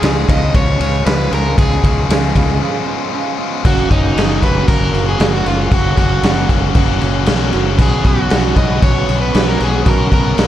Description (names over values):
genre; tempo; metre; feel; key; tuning
indie rock; 116 BPM; 4/4; straight; F# major; A4 = 441 Hz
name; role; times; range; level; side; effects
overdriven semi-hollow guitar; melody; 0.0-10.5 s; D#4 to D#5; -21 LUFS; right 2 dB; analog delay
distorted electric guitar; riff; 0.0-10.5 s; E#3 to F#4; -22 LUFS; left 11 dB; overdrive
electric guitar through a small old amp; riff; 0.0-10.5 s; F#2 to F#4; -22 LUFS; right 9 dB; ensemble chorus
growling fingered electric bass; bass; 0.0-10.5 s; F#1 to C#2; -18 LUFS; equal; overdrive
raw garage drum kit; drums; 0.0-10.5 s; crash cymbal, kick drum, ride cymbal, snare drum; -15 LUFS; equal; none
room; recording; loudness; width
light reverb; dark, warm production; -12 LUFS; side -12 dB against mid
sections
0.0-3.7 A section; 3.7-10.5 A section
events
break 2.6-3.7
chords
0.0 C#7; 3.7 F#; 7.8 Bsus2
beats
0.03 0.55 1.06 | 1.58 2.10 2.62 3.14 | 3.65 4.17 4.69 5.21 | 5.72 6.24 6.76 7.28 | 7.79 8.31 8.83 9.35 | 9.86 10.38